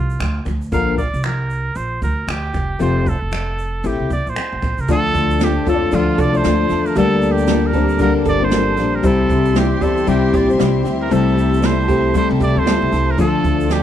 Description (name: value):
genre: acoustic pop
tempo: 116 BPM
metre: 4/4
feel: swing 60% on 16ths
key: D minor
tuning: A4 = 439 Hz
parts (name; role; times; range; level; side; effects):
- clear trumpet; melody; 0.0-13.8 s; F4 to F5; -23 LUFS; right 3 dB; slapback echo
- fingerpicked steel-string acoustic guitar; accompaniment; 0.0-13.8 s; Bb2 to Bb4; -19 LUFS; left 7 dB; none
- upright bass; bass; 0.0-13.8 s; F1 to C3; -21 LUFS; right 1 dB; none
- jazz brush drum kit; drums; 0.1-13.8 s; finger snaps, kick drum, shaker, snare drum; -23 LUFS; right 1 dB; none
- felt-muted upright piano; accompaniment; 4.9-13.8 s; G3 to D5; -24 LUFS; left 3 dB; none
- rich studio string section; sustained chords; 4.9-13.8 s; Bb3 to C6; -30 LUFS; right 2 dB; none
- nylon-string guitar; arpeggios; 4.9-13.8 s; F3 to A4; -23 LUFS; right 9 dB; none
room: little or no reverb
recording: none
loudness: -14 LUFS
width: side -10 dB against mid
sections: 0.0-4.9 A section; 4.9-13.8 B section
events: none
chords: 0.0 Dm; 0.7 Bb; 2.5 Fadd9; 3.8 Am7; 4.9 Dm; 7.0 Gmadd9/D; 9.0 C; 11.1 Am7/C; 13.2 Dm